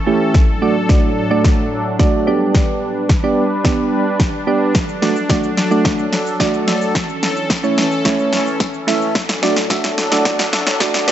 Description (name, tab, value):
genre	dance-pop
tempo	109 BPM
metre	4/4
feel	straight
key	D major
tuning	A4 = 441 Hz
part	sweeping resonant pad	sustained chords	0.0-11.1 s	A2 to B4	-20 LUFS	left 1 dB	chorus, sidechain pumping
part	soft electric-piano-like synth keys	accompaniment	0.1-11.1 s	A3 to E5	-18 LUFS	right 3 dB	chorus, sidechain pumping
part	house drum kit	drums	0.3-11.1 s	hi-hat, kick drum, shaker, snare drum	-16 LUFS	equal	none
part	tambourine	percussion	5.3-10.9 s	none	-32 LUFS	left 9 dB	none
room	light reverb, digital ambience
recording	dark, warm production, high-pass filter, nothing above 7.9 kHz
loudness	-14 LUFS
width	side -11 dB against mid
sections	0.0-11.1 A section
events	build-up 0.0-11.1; drum fill 0.0-11.1; filter sweep 0.0-11.1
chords	0.3 D/A; 2.3 G; 4.7 D; 7.0 A; 9.2 D/A